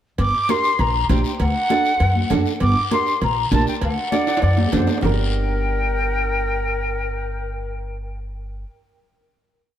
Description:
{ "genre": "latin, cumbia", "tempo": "198 BPM", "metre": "4/4", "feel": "straight", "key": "G harmonic minor", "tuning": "A4 = 441 Hz", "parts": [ { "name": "concert flute", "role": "melody", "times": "0.2-8.2 s", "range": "F#5 to D6", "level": "-22 LUFS", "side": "left 1 dB", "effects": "none" }, { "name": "upright bass", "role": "bass", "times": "0.2-8.6 s", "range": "G1 to F#2", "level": "-22 LUFS", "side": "equal", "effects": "none" }, { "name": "cowbell and timbales", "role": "percussion", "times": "0.2-5.1 s", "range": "none", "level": "-31 LUFS", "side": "right 4 dB", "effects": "none" }, { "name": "guiro", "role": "percussion", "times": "0.2-5.1 s", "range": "none", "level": "-34 LUFS", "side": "left 5 dB", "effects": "none" }, { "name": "congas", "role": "percussion", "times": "0.3-5.1 s", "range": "none", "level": "-26 LUFS", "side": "left 4 dB", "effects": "none" }, { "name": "nylon-string guitar", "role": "accompaniment", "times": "0.5-8.7 s", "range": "D4 to C5", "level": "-26 LUFS", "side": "right 7 dB", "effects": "none" }, { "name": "breathy clarinet", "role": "second line", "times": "4.1-8.2 s", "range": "Bb4 to D5", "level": "-26 LUFS", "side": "left 3 dB", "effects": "none" } ], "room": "moderate plate reverb, RT60 3.0 s", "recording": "heard from further back in the room", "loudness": "-17 LUFS", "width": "side -10 dB against mid", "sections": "0.2-5.0 groove; 5.0-7.4 final chord", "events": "drum fill 4.3-5.0", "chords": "0.2 Gm; 1.4 D; 2.6 Gm; 3.8 D7; 5.0 Gm" }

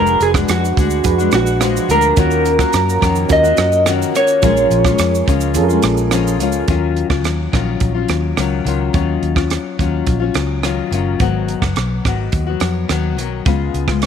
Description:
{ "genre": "indie pop, bedroom pop", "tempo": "106 BPM", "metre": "4/4", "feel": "straight", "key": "Eb minor", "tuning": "A4 = 440 Hz", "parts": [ { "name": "electric guitar through a small old amp", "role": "melody", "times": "0.0-6.1 s", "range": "Gb4 to Eb5", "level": "-16 LUFS", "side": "right 2 dB", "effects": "wide subtle chorus, slapback echo" }, { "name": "nylon-string guitar", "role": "accompaniment", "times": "0.0-14.1 s", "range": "Ab2 to Gb4", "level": "-19 LUFS", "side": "left 12 dB", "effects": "wide subtle chorus, warbly pitch drift" }, { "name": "soft electric-piano-like synth keys", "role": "accompaniment", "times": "0.0-6.7 s", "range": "Db4 to Cb5", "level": "-22 LUFS", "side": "right 13 dB", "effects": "chorus, tremolo, cassette tape" }, { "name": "vintage muted fingered electric bass", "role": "bass", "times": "0.0-14.1 s", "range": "F1 to Gb2", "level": "-19 LUFS", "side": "equal", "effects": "none" }, { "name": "compact cocktail drum kit", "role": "drums", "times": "0.1-14.1 s", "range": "hi-hat, kick drum, rim click, shaker", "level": "-20 LUFS", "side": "right 3 dB", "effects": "none" } ], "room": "light reverb, small room ambience", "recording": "1960s-style stereo with parts hard left and right", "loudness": "-13 LUFS", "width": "side -8 dB against mid", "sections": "0.0-6.7 A section; 6.7-14.1 B section", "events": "none", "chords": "0.0 Bb7b9b13/F; 2.2 Ebm7; 4.4 Bbm7; 6.7 Ebm9; 11.2 Abm7; 13.5 Db7" }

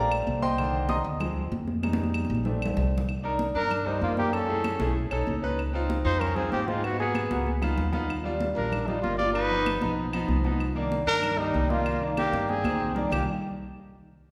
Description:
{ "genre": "Afro-Cuban jazz", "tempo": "192 BPM", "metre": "4/4", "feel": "straight", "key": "C minor", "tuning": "A4 = 439 Hz", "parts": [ { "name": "clear concert grand piano", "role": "accompaniment", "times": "0.0-13.3 s", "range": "D3 to Eb6", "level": "-32 LUFS", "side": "equal", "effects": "none" }, { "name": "upright bass", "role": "bass", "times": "0.0-13.3 s", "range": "G1 to Ab2", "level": "-33 LUFS", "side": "equal", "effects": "none" }, { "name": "claves", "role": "percussion", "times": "0.1-13.2 s", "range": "none", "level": "-42 LUFS", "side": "equal", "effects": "none" }, { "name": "congas", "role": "percussion", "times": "0.1-13.2 s", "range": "none", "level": "-35 LUFS", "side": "equal", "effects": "none" }, { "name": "breathy tenor saxophone", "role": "second line", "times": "3.5-13.3 s", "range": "Bb2 to F4", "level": "-36 LUFS", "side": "equal", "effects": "none" }, { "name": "mellow trumpet", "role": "melody", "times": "3.6-13.3 s", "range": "Eb4 to D5", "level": "-31 LUFS", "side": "equal", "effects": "none" } ], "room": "wet scoring stage reverb, RT60 1.7 s", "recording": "recorded in a church or concert hall", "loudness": "-27 LUFS", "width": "mono", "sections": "0.0-3.1 A section; 3.1-13.1 B section; 13.1-14.3 C section", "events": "grand piano solo 0.0-3.1; drum fill 1.8-3.1, 7.5-8.1, 12.5-13.1", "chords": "0.0 Bbmaj7; 0.6 Cm7; 1.2 Dm7b5; 1.8 Fm7; 2.5 Bbmaj7; 3.1 Cm9; 4.3 F#m7; 5.0 B9; 5.6 Dbmaj9; 6.8 Abm7; 7.5 Db9; 8.1 Ebmaj9; 9.3 Gaug7; 10.6 Cm9" }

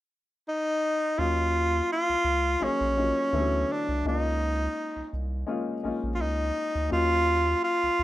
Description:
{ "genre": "lush 1970s-style soul", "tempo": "84 BPM", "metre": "4/4", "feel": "swing 54% on 16ths", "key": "unclear", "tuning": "A4 = 440 Hz", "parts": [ { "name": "breathy tenor saxophone", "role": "melody", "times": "0.5-8.0 s", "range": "Db4 to F4", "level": "-25 LUFS", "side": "equal", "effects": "plate reverb" }, { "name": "warm baby grand piano", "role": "accompaniment", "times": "1.2-8.0 s", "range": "D3 to Ab4", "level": "-33 LUFS", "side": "left 3 dB", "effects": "plate reverb" }, { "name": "round analog bass", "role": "bass", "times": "1.2-8.0 s", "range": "Bb1 to Eb2", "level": "-29 LUFS", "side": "right 1 dB", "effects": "none" } ], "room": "wet small room reverb, RT60 0.6 s", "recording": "rough home demo mix", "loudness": "-24 LUFS", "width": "side -15 dB against mid", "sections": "0.0-1.2 A section; 1.2-8.0 B section", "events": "none", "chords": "0.0 N.C.; 1.2 Ebm9; 3.3 D69; 4.0 Db69; 6.9 Ebm9" }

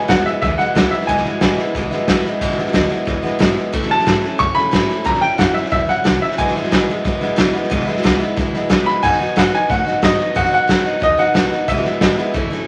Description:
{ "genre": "rockabilly", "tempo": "181 BPM", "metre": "4/4", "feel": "straight", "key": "E major", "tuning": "A4 = 438 Hz", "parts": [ { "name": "picked steel-string acoustic guitar", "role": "accompaniment", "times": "0.0-12.7 s", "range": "E2 to F#4", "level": "-24 LUFS", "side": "equal", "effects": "none" }, { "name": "clear upright piano", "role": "melody", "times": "0.1-1.5, 3.9-6.8, 8.9-12.6 s", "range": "D#5 to C#6", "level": "-20 LUFS", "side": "equal", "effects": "none" }, { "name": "upright bass", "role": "bass", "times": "0.1-12.5 s", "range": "E1 to A#2", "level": "-31 LUFS", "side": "equal", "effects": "none" }, { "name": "raw garage drum kit", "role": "drums", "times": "0.1-12.6 s", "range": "hi-hat, kick drum, snare drum", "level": "-20 LUFS", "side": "equal", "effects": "none" } ], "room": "wet large studio reverb, RT60 0.9 s", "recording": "none", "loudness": "-17 LUFS", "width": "mono", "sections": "0.0-12.7 A section", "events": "none", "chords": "0.0 E; 3.7 A; 5.1 A#dim7; 6.4 E; 9.0 B; 11.7 E" }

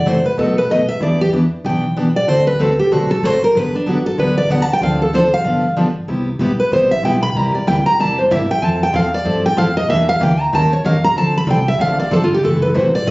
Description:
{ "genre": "acoustic string swing (jazz manouche)", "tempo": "189 BPM", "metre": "4/4", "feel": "swing 59% on 8ths", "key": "G major, C major from 6.1 s", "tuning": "A4 = 439 Hz", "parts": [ { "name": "picked steel-string acoustic guitar", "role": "melody", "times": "0.0-13.1 s", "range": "D4 to B5", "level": "-16 LUFS", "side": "equal", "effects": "none" }, { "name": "upright bass", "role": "bass", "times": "0.0-13.1 s", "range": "F#1 to G2", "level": "-22 LUFS", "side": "equal", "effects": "none" }, { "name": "picked steel-string acoustic guitar", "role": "accompaniment", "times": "0.1-13.1 s", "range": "B2 to Bb4", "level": "-18 LUFS", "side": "equal", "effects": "none" } ], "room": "moderate studio ambience, RT60 0.5 s", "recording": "recorded on a phone in the room, studio reverb, nothing above 7.7 kHz", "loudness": "-13 LUFS", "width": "side -21 dB against mid", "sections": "0.0-6.1 A section; 6.1-13.1 A section", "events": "steel-string acoustic guitar solo 0.0-13.1", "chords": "0.4 B7; 1.0 Em7; 2.3 D7; 3.5 Gmaj7; 4.8 Dm7; 5.4 G7; 6.1 Cmaj7; 7.4 C7; 8.6 Fmaj7; 9.9 Em7b5; 10.5 Eb9; 11.2 Dm7; 12.4 F#m7b5" }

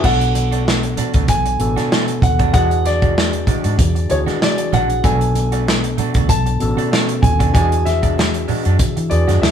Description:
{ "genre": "lush 1970s-style soul", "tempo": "96 BPM", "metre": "4/4", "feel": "swing 54% on 16ths", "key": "B dorian", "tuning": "A4 = 439 Hz", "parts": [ { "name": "warm concert grand piano", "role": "melody", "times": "0.0-9.5 s", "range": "C#5 to A5", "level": "-22 LUFS", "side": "equal", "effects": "none" }, { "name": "overdriven tine electric piano", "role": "accompaniment", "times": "0.0-9.5 s", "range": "B2 to A4", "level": "-22 LUFS", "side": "left 1 dB", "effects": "none" }, { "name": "electric guitar through a small old amp", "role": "riff", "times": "0.0-9.5 s", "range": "G#3 to F#4", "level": "-26 LUFS", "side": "right 4 dB", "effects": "none" }, { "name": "vintage muted fingered electric bass", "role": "bass", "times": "0.0-9.5 s", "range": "A1 to E3", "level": "-19 LUFS", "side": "equal", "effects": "none" }, { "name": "modern studio drum kit", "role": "drums", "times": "0.0-9.5 s", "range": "crash cymbal, hi-hat, kick drum, snare drum", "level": "-18 LUFS", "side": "equal", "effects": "none" }, { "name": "congas", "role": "percussion", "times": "0.0-9.4 s", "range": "none", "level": "-24 LUFS", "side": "right 6 dB", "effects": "none" } ], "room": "moderate studio reverb, RT60 0.7 s", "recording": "band playing live in one room", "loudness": "-14 LUFS", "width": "side -8 dB against mid", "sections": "0.0-9.5 A section", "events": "none", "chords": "0.0 Bm7; 2.5 E9; 5.0 Bm7; 7.5 E9" }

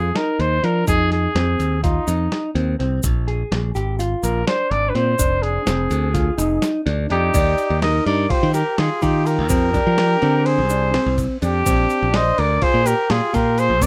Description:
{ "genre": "progressive instrumental, band music in an uneven meter", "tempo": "250 BPM (eighths)", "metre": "9/8", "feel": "straight", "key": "F dorian", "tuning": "A4 = 439 Hz", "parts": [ { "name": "warm trumpet", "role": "melody", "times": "0.0-13.9 s", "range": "Eb4 to Eb5", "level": "-23 LUFS", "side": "equal", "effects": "plate reverb" }, { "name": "mellow electric guitar", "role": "arpeggios", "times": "0.0-13.9 s", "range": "C4 to D5", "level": "-27 LUFS", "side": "equal", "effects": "none" }, { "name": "modern bright picked electric bass", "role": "bass", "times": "0.0-13.9 s", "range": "F1 to F3", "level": "-23 LUFS", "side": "equal", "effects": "none" }, { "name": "dusty soul sampler-style drum kit", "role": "drums", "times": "0.2-13.9 s", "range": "hi-hat, kick drum, ride cymbal, snare drum", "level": "-27 LUFS", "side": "equal", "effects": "none" }, { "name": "egg shaker", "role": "percussion", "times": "0.9-13.9 s", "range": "none", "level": "-33 LUFS", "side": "equal", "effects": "none" }, { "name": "warm flugelhorn", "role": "second line", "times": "7.1-13.9 s", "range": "D4 to C5", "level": "-29 LUFS", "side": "equal", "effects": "plate reverb" } ], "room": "light reverb", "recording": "rough home demo mix", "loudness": "-19 LUFS", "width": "mono", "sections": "0.0-7.3 A section; 7.3-13.9 B section", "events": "trumpet solo 0.0-7.3", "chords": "0.0 Fm7; 3.0 Bb7; 5.2 Fm; 7.3 Ebmaj9; 9.5 Fm69; 11.7 Bb69" }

